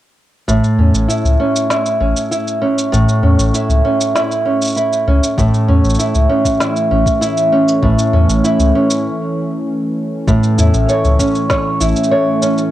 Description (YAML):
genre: folktronica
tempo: 98 BPM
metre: 4/4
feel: straight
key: A major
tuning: A4 = 440 Hz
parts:
  - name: nylon-string guitar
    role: arpeggios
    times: 0.5-12.7 s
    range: A2 to C#5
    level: -14 LUFS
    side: right 1 dB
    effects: low-pass filter, cassette tape, analog delay
  - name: warm sub bass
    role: bass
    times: 0.5-11.9 s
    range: A1 to E2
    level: -14 LUFS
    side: left 1 dB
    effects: none
  - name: electronic shaker and snare drum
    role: drums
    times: 0.5-12.7 s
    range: none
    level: -22 LUFS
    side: equal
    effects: none
  - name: warm analog pad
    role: sustained chords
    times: 5.4-12.7 s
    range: E3 to C#4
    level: -19 LUFS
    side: equal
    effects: chorus, cassette tape
  - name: electronic kick drum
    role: drums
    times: 5.4-11.6 s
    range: none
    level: -19 LUFS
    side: left 1 dB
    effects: none
room: moderate spring reverb, RT60 1.3 s, digital ambience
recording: home recording on cassette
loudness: -12 LUFS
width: side -14 dB against mid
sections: 0.5-10.3 A section; 10.3-12.7 B section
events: break 9.1-10.3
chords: 0.5 A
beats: | 0.48 1.09 1.71 2.32 | 2.93 3.54 4.16 4.77 | 5.38 5.99 6.61 7.22 | 7.83 8.44 9.05 9.67 | 10.28 10.89 11.50 12.12